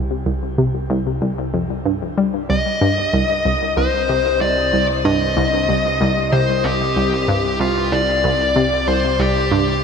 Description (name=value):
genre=ambient, sequencer-driven space music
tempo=94 BPM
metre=4/4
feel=straight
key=C minor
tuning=A4 = 441 Hz
part: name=analog pluck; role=riff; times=0.0-9.8 s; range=C2 to G3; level=-19 LUFS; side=equal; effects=chorus, ping-pong delay
part: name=analog drone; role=bass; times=0.0-9.8 s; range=C2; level=-24 LUFS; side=equal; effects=chorus, tube saturation
part: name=dark smooth lead guitar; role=melody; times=2.5-9.8 s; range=F4 to Eb5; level=-18 LUFS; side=left 2 dB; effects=overdrive, ping-pong delay
room=wet shimmer reverb, RT60 6.6 s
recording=none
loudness=-16 LUFS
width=side -6 dB against mid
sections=0.0-9.8 A section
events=filter sweep on synth arpeggio sound 0.0-9.8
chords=0.0 C5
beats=0.58 1.22 1.86 | 2.50 3.13 3.77 4.41 | 5.05 5.69 6.33 6.96 | 7.60 8.24 8.88 9.52